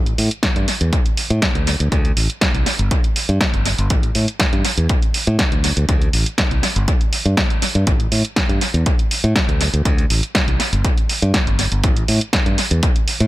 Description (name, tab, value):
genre	filtered disco house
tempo	121 BPM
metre	4/4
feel	straight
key	A minor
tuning	A4 = 436 Hz
part	modern bright fingered electric bass	bass	0.0-13.3 s	G1 to A2	-18 LUFS	equal	sidechain pumping, low-pass filter
part	punchy analog drum machine	drums	0.1-13.3 s	hi-hat, snare drum	-20 LUFS	right 1 dB	sidechain pumping on hats, dub echo
part	electronic kick drum	drums	0.4-12.9 s	none	-18 LUFS	equal	none
room	little or no reverb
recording	echo-heavy mix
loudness	-15 LUFS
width	side -16 dB against mid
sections	0.0-13.3 A section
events	none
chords	none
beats	0.43 0.93 1.42 | 1.92 2.42 2.91 3.41 | 3.90 4.40 4.89 5.39 | 5.89 6.38 6.88 7.37 | 7.87 8.37 8.86 9.36 | 9.85 10.35 10.85 11.34 | 11.84 12.33 12.83